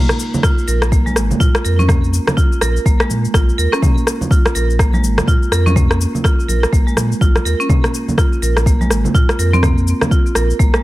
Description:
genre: afro house.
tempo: 124 BPM.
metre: 4/4.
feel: swing 60% on 16ths.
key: Bb minor.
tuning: A4 = 440 Hz.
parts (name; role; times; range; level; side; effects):
marimba with hard mallets; arpeggios; 0.0-10.8 s; Ab3 to Bb4; -20 LUFS; right 2 dB; sidechain pumping, digital delay.
deep house drum kit; drums; 0.1-10.8 s; cabasa, rim click, toms; -20 LUFS; left 1 dB; overdrive.
congas; percussion; 0.3-10.1 s; none; -24 LUFS; right 2 dB; none.
electronic kick drum; drums; 0.4-10.7 s; none; -14 LUFS; equal; overdrive.
warm sub bass; bass; 0.7-10.7 s; Ab1 to Bb2; -17 LUFS; equal; sidechain pumping.
room: digital ambience.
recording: none.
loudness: -12 LUFS.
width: side -17 dB against mid.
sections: 0.0-10.8 A section.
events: none.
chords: 0.0 Bb5; 7.7 N.C..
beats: 0.44 0.92 1.41 | 1.89 2.37 2.86 3.34 | 3.82 4.31 4.79 5.28 | 5.76 6.24 6.73 7.21 | 7.70 8.18 8.66 9.15 | 9.63 10.11 10.60.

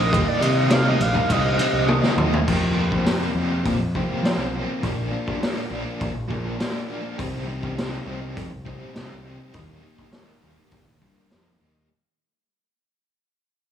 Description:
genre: psychedelic rock.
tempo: 102 BPM.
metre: 4/4.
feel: straight.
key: C minor.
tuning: A4 = 441 Hz.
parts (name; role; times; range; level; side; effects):
overdriven synth lead; melody; 0.0-2.2 s; D5 to F5; -25 LUFS; right 3 dB; tape echo.
overdriven electric guitar; riff; 0.0-11.9 s; F2 to Eb4; -27 LUFS; left 1 dB; tremolo.
growling fingered electric bass; bass; 0.0-11.9 s; G1 to F3; -25 LUFS; equal; overdrive.
raw garage drum kit; drums; 0.1-11.4 s; crash cymbal, hi-hat, kick drum, ride cymbal, snare drum, toms; -25 LUFS; equal; none.
congas; percussion; 0.1-2.5 s; none; -34 LUFS; right 9 dB; none.
room: light reverb, studio ambience.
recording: small room reverb.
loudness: -20 LUFS.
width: side -9 dB against mid.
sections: 0.0-2.5 A section; 2.5-11.9 B section.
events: drum fill 1.9-2.5; fade-out 2.5-11.9.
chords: 0.0 Cm; 2.5 Fsus4; 4.8 Bb; 7.2 Cm; 9.5 Eb.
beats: | 0.12 0.71 1.30 1.89 | 2.47 3.06 3.65 4.24 | 4.82 5.41 6.00 6.59 | 7.18 7.77 8.36 8.95 | 9.53 10.12 10.71 11.30.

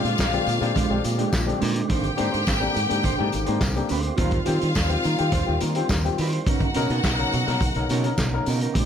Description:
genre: disco.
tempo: 105 BPM.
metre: 4/4.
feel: straight.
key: unclear.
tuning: A4 = 441 Hz.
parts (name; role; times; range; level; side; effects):
clear studio string section; second line; 0.0-8.9 s; D4 to G5; -28 LUFS; left 2 dB; none.
dark grand piano; accompaniment; 0.0-8.9 s; Ab2 to A#4; -28 LUFS; left 6 dB; none.
mellow electric guitar; accompaniment; 0.0-8.9 s; Ab3 to C5; -29 LUFS; right 9 dB; none.
tonewheel organ; sustained chords; 0.0-8.9 s; C3 to G4; -31 LUFS; right 1 dB; overdrive, fast rotary speaker.
modern bright fingered electric bass; bass; 0.0-8.9 s; Ab1 to Eb3; -26 LUFS; equal; tube saturation.
vintage drum kit; drums; 0.1-8.9 s; handclaps, hi-hat, kick drum, snare drum; -27 LUFS; equal; none.
tambourine; percussion; 0.2-8.9 s; none; -39 LUFS; left 3 dB; none.
room: light reverb.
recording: none.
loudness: -20 LUFS.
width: side -8 dB against mid.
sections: 0.0-8.9 A section.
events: none.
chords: 0.0 Bb13; 1.9 Abmaj9#11; 4.2 Eb69; 6.5 Bmaj9.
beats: 0.19 0.76 1.33 | 1.90 2.47 3.04 3.61 | 4.18 4.75 5.32 5.89 | 6.46 7.04 7.61 8.18 | 8.75.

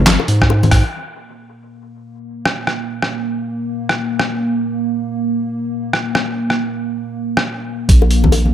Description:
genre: deep dubstep.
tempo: 138 BPM.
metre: 4/4.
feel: swing 61% on 16ths, half-time.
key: unclear.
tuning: A4 = 443 Hz.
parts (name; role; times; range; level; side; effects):
saturated sub bass; bass; 0.0-0.8, 7.9-8.5 s; Ab1 to Ab2; -14 LUFS; equal; none.
trip hop sampler-style drum kit; drums; 0.1-8.4 s; handclaps, hi-hat, rim click, snare drum; -18 LUFS; equal; none.
bongos and congas; percussion; 0.2-0.7, 8.0-8.5 s; none; -18 LUFS; left 3 dB; dub echo.
electronic kick drum; drums; 0.4-0.8, 7.9-8.3 s; none; -12 LUFS; equal; none.
dark analog pad; sustained chords; 0.9-8.5 s; Bb3; -21 LUFS; right 1 dB; chorus.
room: moderate spring reverb, RT60 1.6 s.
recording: none.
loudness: -15 LUFS.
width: side -10 dB against mid.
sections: 0.9-7.9 A section.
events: band accent 0.7; break 7.5-7.9.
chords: 0.0 N.C.; 7.9 Bb5.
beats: 0.06 0.50 | 0.93 1.37 1.80 2.24 | 2.67 3.11 3.54 3.98 | 4.41 4.85 5.28 5.72 | 6.15 6.58 7.02 7.46 | 7.89 8.32.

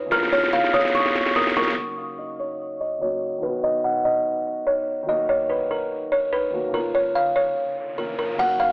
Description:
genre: hip hop, trap.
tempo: 145 BPM.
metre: 4/4.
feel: half-time.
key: unclear.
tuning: A4 = 439 Hz.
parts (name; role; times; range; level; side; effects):
buzzing kalimba; melody; 0.0-8.7 s; A#4 to F#5; -21 LUFS; equal; low-pass filter.
dark grand piano; accompaniment; 0.0-8.7 s; A#2 to F#4; -32 LUFS; left 1 dB; low-pass filter.
short 808-style bass; bass; 0.0-1.8 s; D#1 to A#1; -40 LUFS; equal; none.
glassy synth bell; second line; 0.1-1.8 s; C#6 to E#6; -24 LUFS; equal; chorus, tremolo, tape echo.
trap drum kit; drums; 0.1-1.8, 8.4-8.5 s; crash cymbal, hi-hat, snare drum; -23 LUFS; equal; overdrive.
riser and impact; sound effects; 7.6-8.7 s; none; -38 LUFS; equal; none.
room: small room reverb.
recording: dry, gritty hardware recording, telephone sound.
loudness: -20 LUFS.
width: side -30 dB against mid.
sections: 0.0-1.8 A section; 1.8-8.4 B section.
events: drum fill 0.1-1.8; filter sweep 1.8-8.4; riser 7.6-8.4; kick muted 8.4-8.7; impact 8.4-8.7.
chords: 0.1 A#m; 1.8 F#; 3.4 B; 5.1 D#m; 6.7 A#m.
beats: | 0.12 0.53 0.95 1.36 | 1.77 2.19 2.60 3.02 | 3.43 3.84 4.26 4.67 | 5.08 5.50 5.91 6.33 | 6.74 7.15 7.57 7.98 | 8.39.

